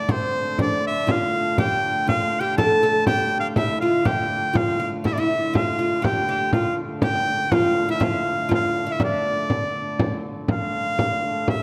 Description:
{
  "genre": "medieval dance",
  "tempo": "121 BPM",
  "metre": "3/4",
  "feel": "straight",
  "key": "D minor",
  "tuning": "A4 = 436 Hz",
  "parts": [
    { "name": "edgy shawm", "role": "melody", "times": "0.0-11.6 s", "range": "C5 to A5", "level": "-26 LUFS", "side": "equal", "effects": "none" },
    { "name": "oud", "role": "second line", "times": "0.0-10.2 s", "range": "C4 to A4", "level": "-27 LUFS", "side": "equal", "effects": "none" },
    { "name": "dark hurdy-gurdy", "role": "drone", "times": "0.0-11.6 s", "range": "D3 to A3", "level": "-34 LUFS", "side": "equal", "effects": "none" },
    { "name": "frame drum", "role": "percussion", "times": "0.1-11.6 s", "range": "none", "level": "-28 LUFS", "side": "equal", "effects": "none" }
  ],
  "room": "wet scoring stage reverb, RT60 1.6 s",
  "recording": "dark, warm production",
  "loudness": "-22 LUFS",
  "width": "mono",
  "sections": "0.0-10.5 A section; 10.5-11.6 A section",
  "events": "none",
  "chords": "none"
}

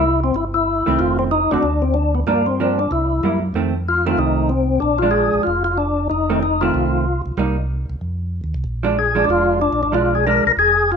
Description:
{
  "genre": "soul jazz organ trio",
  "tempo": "188 BPM",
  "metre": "4/4",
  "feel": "swing 62% on 8ths",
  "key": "unclear",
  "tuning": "A4 = 441 Hz",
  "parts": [
    { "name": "percussive tonewheel organ", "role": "melody", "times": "0.0-11.0 s", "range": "Bb3 to Bb4", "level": "-17 LUFS", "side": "left 3 dB", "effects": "slow rotary speaker, overdrive, chorus vibrato" },
    { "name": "vintage hollow-body jazz guitar", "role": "accompaniment", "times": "0.0-10.4 s", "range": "D3 to Gb4", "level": "-21 LUFS", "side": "right 5 dB", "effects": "none" },
    { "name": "mellow tonewheel organ", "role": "bass", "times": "0.0-11.0 s", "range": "F1 to G2", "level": "-22 LUFS", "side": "equal", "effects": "slow rotary speaker" }
  ],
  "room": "moderate large studio reverb, RT60 1.4 s",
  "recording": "minimal, uncompressed stereo recording",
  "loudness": "-16 LUFS",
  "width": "side -6 dB against mid",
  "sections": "0.0-3.5 A section; 3.5-11.0 A section",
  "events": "none",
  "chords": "0.0 C; 1.0 F7; 1.6 N.C.; 2.3 Gm7; 2.9 C7; 3.5 F7; 4.8 Bb7; 6.1 F7; 7.4 Cm7; 8.0 F5; 8.7 Bb7; 9.9 Bdim7"
}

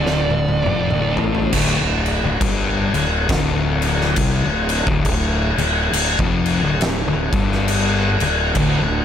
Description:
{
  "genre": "stoner and doom metal",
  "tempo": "68 BPM",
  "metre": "4/4",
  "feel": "swing 60% on 8ths",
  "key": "D minor",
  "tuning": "A4 = 440 Hz",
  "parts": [
    { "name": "fuzz lead guitar", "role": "melody", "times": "0.0-1.1 s", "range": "D5", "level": "-25 LUFS", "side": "right 2 dB", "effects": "distortion, tape echo" },
    { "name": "thick fuzz guitar", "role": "riff", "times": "0.0-9.0 s", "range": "D2 to C3", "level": "-22 LUFS", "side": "left 5 dB", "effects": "distortion" },
    { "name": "thick fuzz guitar", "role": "riff", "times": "0.0-1.5, 8.6-9.0 s", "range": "D2 to A2", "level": "-26 LUFS", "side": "right 11 dB", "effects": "distortion" },
    { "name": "fuzz fingered electric bass", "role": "bass", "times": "0.0-9.0 s", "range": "D1 to C2", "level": "-22 LUFS", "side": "equal", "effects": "overdrive, tube saturation" },
    { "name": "oversized low-tuned drum kit", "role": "drums", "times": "0.1-8.8 s", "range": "crash cymbal, kick drum, snare drum, toms", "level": "-20 LUFS", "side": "equal", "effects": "none" }
  ],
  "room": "light reverb",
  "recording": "none",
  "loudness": "-16 LUFS",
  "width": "side -9 dB against mid",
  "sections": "0.0-1.5 A section; 1.5-9.0 B section",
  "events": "drum fill 0.0-1.5",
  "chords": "0.0 Dm; 1.5 N.C."
}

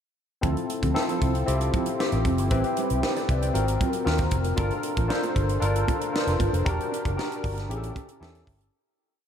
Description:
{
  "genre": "polished 1980s jazz-funk pop",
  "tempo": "116 BPM",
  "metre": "4/4",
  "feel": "straight",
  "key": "D minor",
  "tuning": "A4 = 441 Hz",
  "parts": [
    { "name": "barky tine electric piano", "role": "accompaniment", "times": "0.4-8.8 s", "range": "C4 to G5", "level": "-27 LUFS", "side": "left 2 dB", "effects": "ensemble chorus" },
    { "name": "mellow electric guitar", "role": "riff", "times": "0.4-8.6 s", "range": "F3 to Bb4", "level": "-33 LUFS", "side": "right 6 dB", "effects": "ensemble chorus" },
    { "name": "vintage muted fingered electric bass", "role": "bass", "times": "0.4-8.7 s", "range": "E1 to E2", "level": "-26 LUFS", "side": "equal", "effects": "none" },
    { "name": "crisp fusion drum kit", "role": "drums", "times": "0.4-8.7 s", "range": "hi-hat, kick drum, snare drum", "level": "-29 LUFS", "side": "right 1 dB", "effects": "none" }
  ],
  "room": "moderate huge ambient reverb, RT60 8.8 s",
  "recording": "dreamy mix soaked in reverb",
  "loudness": "-23 LUFS",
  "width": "side -8 dB against mid",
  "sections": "0.4-8.7 verse",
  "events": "fade-out 6.7-8.7",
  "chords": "0.4 Dm9 (rootless); 2.5 Am7; 3.5 G#13; 4.6 Gm9; 6.7 Em7b5 (rootless); 7.7 A7"
}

